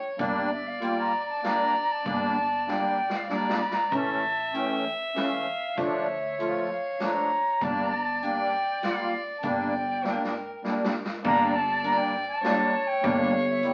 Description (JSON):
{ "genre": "klezmer", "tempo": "98 BPM", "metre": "3/4", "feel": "straight", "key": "G dorian sharp4", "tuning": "A4 = 439 Hz", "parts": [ { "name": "mellow concert flute", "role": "melody", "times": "0.0-13.7 s", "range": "E5 to Bb5", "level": "-30 LUFS", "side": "equal", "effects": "none" }, { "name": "warm violin", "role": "second line", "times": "0.0-13.7 s", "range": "Bb4 to E5", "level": "-34 LUFS", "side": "equal", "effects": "none" }, { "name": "musette accordion", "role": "accompaniment", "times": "0.2-13.7 s", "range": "E3 to F4", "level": "-31 LUFS", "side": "equal", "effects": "none" }, { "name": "upright bass", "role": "bass", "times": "0.2-13.7 s", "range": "G1 to D2", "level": "-36 LUFS", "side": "equal", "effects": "none" }, { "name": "street-band drum kit", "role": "drums", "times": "0.2-13.7 s", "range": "crash cymbal, hi-hat, kick drum, snare drum", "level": "-36 LUFS", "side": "equal", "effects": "none" } ], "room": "wet studio reverb, RT60 0.6 s", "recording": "very old 78 rpm record, vinyl crackle", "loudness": "-27 LUFS", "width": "mono", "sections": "0.0-11.2 A section; 11.2-13.7 B section", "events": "speeding up 0.0-13.7; drum fill 2.7-3.9, 10.0-11.2", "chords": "0.2 Gm; 3.9 A; 5.8 Dm; 7.6 Gm", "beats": "| 0.19 0.82 1.44 | 2.06 2.68 3.30 | 3.92 4.54 5.16 | 5.77 6.39 7.00 | 7.61 8.22 8.83 | 9.44 10.04 10.65 | 11.25 11.85 12.45 | 13.04 13.64" }